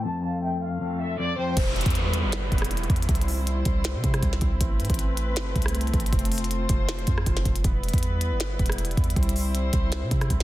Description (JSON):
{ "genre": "hip hop, trap", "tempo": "158 BPM", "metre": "4/4", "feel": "half-time", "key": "E phrygian", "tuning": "A4 = 441 Hz", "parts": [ { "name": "warm studio violin section", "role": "melody", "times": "0.0-1.5 s", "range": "C5 to A5", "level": "-31 LUFS", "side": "left 1 dB", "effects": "tape echo" }, { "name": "electric guitar at the edge of break-up", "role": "accompaniment", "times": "0.0-1.6 s", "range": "F2", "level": "-28 LUFS", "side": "left 3 dB", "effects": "tremolo" }, { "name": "dark chamber string section", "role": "sustained chords", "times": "0.0-10.4 s", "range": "F3 to C5", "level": "-32 LUFS", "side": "left 1 dB", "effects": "none" }, { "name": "breathy mellow silver concert flute", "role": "second line", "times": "0.2-1.6 s", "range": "E5 to G5", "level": "-39 LUFS", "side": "right 3 dB", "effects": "tape echo" }, { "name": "warm 808-style bass", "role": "bass", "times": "1.6-10.4 s", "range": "E1 to C3", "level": "-26 LUFS", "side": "equal", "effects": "none" }, { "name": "minimal click drum kit", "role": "drums", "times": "1.6-10.4 s", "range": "crash cymbal, hi-hat, kick drum, rim click, snare drum", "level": "-25 LUFS", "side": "equal", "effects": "soft clipping on snare" }, { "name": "downlifter", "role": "sound effects", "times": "1.6-4.6 s", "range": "none", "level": "-33 LUFS", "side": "right 1 dB", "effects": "none" } ], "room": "little or no reverb", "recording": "dense, heavily limited modern master, low-pass filter", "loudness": "-22 LUFS", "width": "side -16 dB against mid", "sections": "0.0-1.6 A section; 1.6-10.4 B section", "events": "filter sweep 0.0-1.6", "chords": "0.1 F; 1.6 Em; 3.1 C; 4.6 Amadd9; 6.1 F; 7.6 Em; 9.2 C", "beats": "| 0.05 0.43 0.81 1.19 | 1.57 1.95 2.33 2.71 | 3.09 3.47 3.85 4.23 | 4.61 4.99 5.37 5.75 | 6.13 6.51 6.89 7.26 | 7.64 8.03 8.40 8.78 | 9.16 9.54 9.92 10.30" }